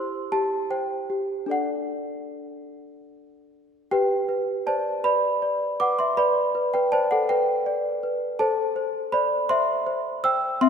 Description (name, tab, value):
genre	classical, lullaby for celesta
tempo	49-55 BPM (dotted quarters)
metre	6/8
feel	rubato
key	G major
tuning	A4 = 440 Hz
part	celesta	solo	0.0-10.7 s	C4 to E6	-22 LUFS	equal	none
room	wet concert hall reverb, RT60 2.2 s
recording	minimal, uncompressed stereo recording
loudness	-22 LUFS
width	side -7 dB against mid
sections	0.0-3.9 A section; 3.9-10.7 B section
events	none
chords	0.0 C/E; 1.5 D; 3.9 G; 8.4 Am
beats	0.32 | 1.51 2.72 | 3.91 5.04 | 6.17 7.29 | 8.39 9.50 | 10.61